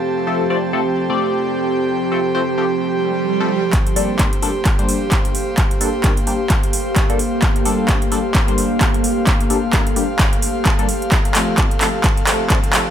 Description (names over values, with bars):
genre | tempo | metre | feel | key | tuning
bass house | 130 BPM | 4/4 | swing 58% on 16ths | G minor | A4 = 440 Hz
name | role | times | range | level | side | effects
deep dark ambient pad | sustained chords | 0.0-12.9 s | F3 to A4 | -23 LUFS | equal | chorus, built-in reverb, sidechain pumping
airy breathy pad | texture | 0.0-12.9 s | G4 to A5 | -23 LUFS | right 2 dB | chorus, sidechain pumping
band-passed chord stab | stabs | 0.3-12.8 s | F3 to D5 | -23 LUFS | left 4 dB | phaser, sidechain pumping, ping-pong delay
swell and riser | sound effects | 3.0-3.7, 12.4-12.9 s | none | -25 LUFS | right 4 dB | none
big-room dance drum kit | drums | 3.7-12.8 s | handclaps, hi-hat | -20 LUFS | right 1 dB | none
electronic kick drum | drums | 3.7-12.6 s | none | -18 LUFS | equal | none
room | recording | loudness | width
light reverb | none | -15 LUFS | side -9 dB against mid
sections
0.0-3.7 A section; 3.7-12.9 B section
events
swell 3.0-3.7; build-up 3.7-12.9; drum fill 3.7-12.9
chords
0.0 F; 3.7 Gmadd9; 11.1 F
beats
| 0.04 0.50 0.96 1.43 | 1.89 2.35 2.81 3.27 | 3.73 4.19 4.66 5.12 | 5.58 6.04 6.50 6.96 | 7.42 7.89 8.35 8.81 | 9.27 9.73 10.19 10.65 | 11.12 11.58 12.04 12.50